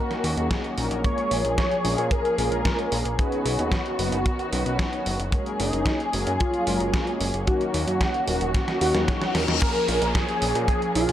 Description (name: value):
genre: italo disco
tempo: 112 BPM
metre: 4/4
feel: straight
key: unclear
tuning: A4 = 443 Hz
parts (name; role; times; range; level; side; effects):
- wide unison lead; melody; 0.0-11.1 s; D#4 to C#5; -27 LUFS; equal; ensemble chorus, tape echo
- muted studio string section; sustained chords; 0.0-11.1 s; D#3 to G#4; -28 LUFS; left 1 dB; none
- detuned 8-bit digital drum machine; drums; 0.1-11.1 s; crash cymbal, hi-hat, snare drum; -30 LUFS; equal; none
- fat analog bass; bass; 0.2-11.1 s; D#1 to A#2; -28 LUFS; equal; none
- mellow synth brass; stabs; 0.4-9.6 s; F#3 to C#5; -32 LUFS; left 2 dB; chorus
- kick drum; drums; 0.5-10.8 s; none; -25 LUFS; equal; none
- reverse cymbal and downlifter; sound effects; 8.9-11.1 s; none; -31 LUFS; left 4 dB; none
room: light reverb, small room ambience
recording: dry, gritty hardware recording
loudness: -21 LUFS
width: side -11 dB against mid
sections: 0.0-9.6 A section; 9.6-11.1 B section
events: drum fill 8.5-9.6; reverse cymbal 8.9-9.6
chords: 0.0 D#m7; 1.0 A#m7; 3.2 Badd9; 5.3 F#add9; 7.5 D#m7; 9.6 A#m7